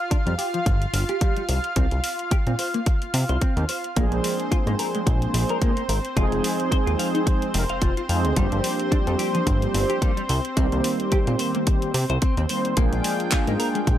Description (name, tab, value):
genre	nu-disco, nu disco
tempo	109 BPM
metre	4/4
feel	swing 56% on 16ths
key	C minor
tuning	A4 = 440 Hz
part	lush unison pad	sustained chords	0.0-14.0 s	C4 to G5	-29 LUFS	equal	chorus, sidechain pumping
part	clean electric guitar	riff	0.1-13.8 s	F3 to F5	-29 LUFS	left 1 dB	wide subtle chorus, low-pass filter, tape echo
part	electronic kick drum	drums	0.1-14.0 s	none	-22 LUFS	equal	none
part	house drum kit	drums	0.1-14.0 s	handclaps, hi-hat	-30 LUFS	equal	none
part	fat analog bass	bass	0.3-14.0 s	F1 to C3	-24 LUFS	equal	none
part	mellow synth brass	accompaniment	4.0-14.0 s	Eb3 to C5	-26 LUFS	right 1 dB	chorus, tape echo
room	little or no reverb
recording	none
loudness	-20 LUFS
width	side -11 dB against mid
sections	0.0-14.0 A section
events	filter sweep on clean electric guitar 0.0-14.0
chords	0.0 G5; 1.5 N.C.; 4.0 Bb7; 6.2 Fm7; 8.4 Gm7; 10.3 Cm7; 12.8 Bb7